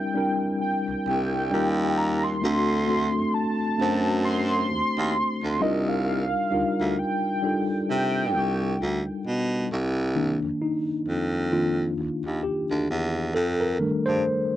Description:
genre	R&B, neo-soul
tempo	66 BPM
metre	4/4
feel	swing 57% on 16ths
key	C dorian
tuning	A4 = 441 Hz
part	warm velvety synth lead	melody	0.0-9.2 s	Eb5 to C6	-27 LUFS	right 1 dB	chorus
part	mellow tine electric piano	accompaniment	0.0-14.6 s	Eb3 to C5	-26 LUFS	left 1 dB	medium stereo tremolo
part	breathy baritone saxophone	bass	0.9-14.2 s	C2 to C3	-26 LUFS	right 1 dB	none
room	small room reverb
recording	dry, close 1970s-style studio recording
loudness	-22 LUFS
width	side -13 dB against mid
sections	0.0-9.7 A section; 9.7-14.6 B section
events	tine electric piano solo 9.7-14.6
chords	0.0 C7; 1.5 Eb9; 2.4 D7; 5.6 Cm11; 9.7 Cm7; 13.3 F13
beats	0.60 1.51 | 2.42 3.33 4.24 5.15 | 6.06 6.97 7.88 8.79 | 9.69 10.60 11.51 12.42 | 13.33 14.24

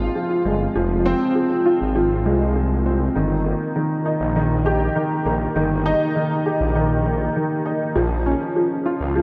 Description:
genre	piano and strings electronica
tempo	100 BPM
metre	4/4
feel	straight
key	unclear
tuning	A4 = 440 Hz
part	warm upright piano	riff	0.0-9.2 s	Eb3 to G4	-22 LUFS	equal	analog chorus, diffuse ambient delay
part	dark detuned saw bass	bass	0.0-9.2 s	F1 to Db2	-25 LUFS	equal	none
room	wet cathedral reverb, RT60 6.2 s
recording	dreamy mix soaked in reverb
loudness	-20 LUFS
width	mono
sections	0.0-9.2 A section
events	none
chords	0.0 Fm; 3.2 Eb/G; 8.0 Bbm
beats	0.15 | 0.76 1.35 1.96 2.56 | 3.15 3.75 4.36 4.96 | 5.55 6.16 6.75 7.36 | 7.96 8.55 9.15

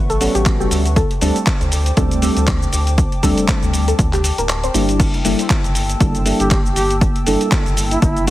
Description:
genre	deep house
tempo	119 BPM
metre	4/4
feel	swing 57% on 16ths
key	G dorian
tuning	A4 = 439 Hz
part	dark analog pad	sustained chords	0.0-8.3 s	Bb3 to E6	-26 LUFS	left 1 dB	chorus, sidechain pumping
part	deep mellow chord stab	stabs	0.0-8.3 s	G3 to A4	-20 LUFS	equal	chorus, phaser, sidechain pumping, digital delay
part	rubbery square bass	bass	0.0-8.3 s	D1 to D2	-20 LUFS	equal	sidechain pumping
part	soft round pluck	melody	0.1-4.9 s	G4 to C5	-25 LUFS	left 1 dB	analog chorus, dub echo
part	dusty soul sampler-style drum kit	drums	0.1-8.3 s	crash cymbal, handclaps, hi-hat, shaker	-23 LUFS	equal	none
part	electronic kick drum	drums	0.5-8.1 s	none	-17 LUFS	equal	overdrive
part	trumpet with bucket mute	melody	6.4-8.3 s	E4 to G4	-21 LUFS	right 1 dB	digital delay
room	light reverb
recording	heavily compressed radio sound, multiband compression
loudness	-14 LUFS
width	side -15 dB against mid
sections	0.0-8.3 A section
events	kick drops out 4.5-5.0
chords	0.0 A13; 1.0 D7sus4; 5.0 Gm69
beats	0.46 | 0.96 1.47 1.97 2.48 | 2.98 3.48 3.99 4.49 | 5.00 5.50 6.00 6.51 | 7.01 7.52 8.02

